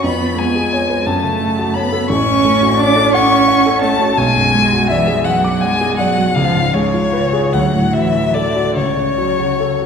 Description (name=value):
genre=classical, slow romantic movement for piano trio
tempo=47-60 BPM (dotted quarters)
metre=6/8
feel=rubato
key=F# minor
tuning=A4 = 440 Hz
part: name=warm violin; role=melody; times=0.0-9.9 s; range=C#5 to D6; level=-16 LUFS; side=left 4 dB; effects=none
part: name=warm cello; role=second line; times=0.0-9.9 s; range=C#3 to D4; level=-18 LUFS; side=right 4 dB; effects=none
part: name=dark concert grand piano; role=accompaniment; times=0.0-9.9 s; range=A1 to D6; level=-16 LUFS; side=equal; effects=none
room=wet scoring stage reverb, RT60 2.0 s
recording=recorded in a church or concert hall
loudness=-12 LUFS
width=side -6 dB against mid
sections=0.0-9.9 A section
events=none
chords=0.0 C#7/E#; 1.1 F#m; 2.1 F#m/A; 4.2 G#m7b5/B; 6.4 C#7; 7.5 D; 8.8 F#m/C#